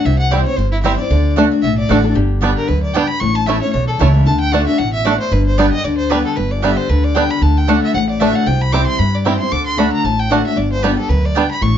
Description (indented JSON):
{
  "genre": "bluegrass",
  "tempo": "228 BPM",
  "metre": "4/4",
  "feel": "swing 55% on 8ths",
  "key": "G major",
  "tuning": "A4 = 438 Hz",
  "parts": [
    { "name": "clear fiddle", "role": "melody", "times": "0.0-11.8 s", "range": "E4 to D6", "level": "-21 LUFS", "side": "equal", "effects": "none" },
    { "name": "picked steel-string acoustic guitar", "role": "accompaniment", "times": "0.0-11.8 s", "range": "E2 to G4", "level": "-18 LUFS", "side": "left 4 dB", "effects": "none" },
    { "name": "upright bass", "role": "bass", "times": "0.1-11.8 s", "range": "G1 to G2", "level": "-17 LUFS", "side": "equal", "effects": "none" },
    { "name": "bluegrass banjo", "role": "arpeggios", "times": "0.3-11.4 s", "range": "G3 to E4", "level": "-18 LUFS", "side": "right 4 dB", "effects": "none" },
    { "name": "mandolin", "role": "stabs", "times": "0.3-11.5 s", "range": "A3 to A5", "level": "-23 LUFS", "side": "right 8 dB", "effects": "none" },
    { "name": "lap resonator guitar", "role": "second line", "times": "2.0-2.5 s", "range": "G4 to A4", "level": "-30 LUFS", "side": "left 8 dB", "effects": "none" }
  ],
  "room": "light reverb",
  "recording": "dark, warm production, nothing above 7.5 kHz",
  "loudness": "-13 LUFS",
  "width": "side -9 dB against mid",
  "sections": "0.0-6.4 A section; 6.4-11.8 A section",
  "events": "fiddle solo 0.0-11.8",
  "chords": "0.1 C; 1.1 D; 2.2 G; 3.2 A; 4.3 D; 5.3 G; 7.4 D; 8.5 C; 9.5 D; 10.6 G",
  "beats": "| 0.06 0.32 0.58 0.84 | 1.11 1.37 1.63 1.90 | 2.16 2.42 2.69 2.95 | 3.21 3.48 3.74 4.00 | 4.27 4.53 4.79 5.05 | 5.32 5.58 5.84 6.11 | 6.37 6.63 6.89 7.16 | 7.42 7.68 7.95 8.21 | 8.47 8.73 8.99 9.26 | 9.52 9.78 10.04 10.31 | 10.57 10.83 11.09 11.36 | 11.62"
}